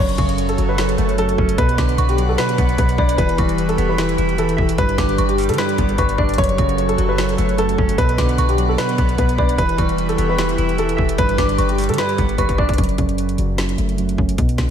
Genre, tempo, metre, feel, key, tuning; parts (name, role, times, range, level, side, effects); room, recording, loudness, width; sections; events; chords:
hip hop, trap; 150 BPM; 4/4; half-time; A4 = 440 Hz
warm baby grand piano; melody; 0.0-12.8 s; G4 to D5; -22 LUFS; left 1 dB; diffuse ambient delay
semi-hollow electric guitar; accompaniment; 0.0-14.7 s; F#2 to E5; -22 LUFS; right 5 dB; low-pass filter
airy breathy pad; sustained chords; 0.0-12.8 s; E3 to F#5; -25 LUFS; equal; chorus
clean 808-style bass; bass; 0.0-14.7 s; E1 to D3; -21 LUFS; left 1 dB
trap drum kit; drums; 0.1-14.7 s; hi-hat, kick drum, snare drum; -22 LUFS; left 1 dB
dark detuned synth bell; second line; 0.2-12.8 s; B5 to D6; -28 LUFS; left 1 dB; chorus, phaser, diffuse ambient delay
moderate lush hall reverb, RT60 1.9 s, digital ambience; dreamy mix soaked in reverb; -15 LUFS; side -8 dB against mid
0.0-12.8 A section; 12.8-14.7 B section
drum fill 12.4-12.8; filter sweep on clean electric guitar 12.8-14.7
0.0 F#m; 1.6 Bm; 3.2 Em; 4.8 G; 6.4 F#m; 8.0 Bm; 9.6 Em; 11.2 G; 12.8 F#m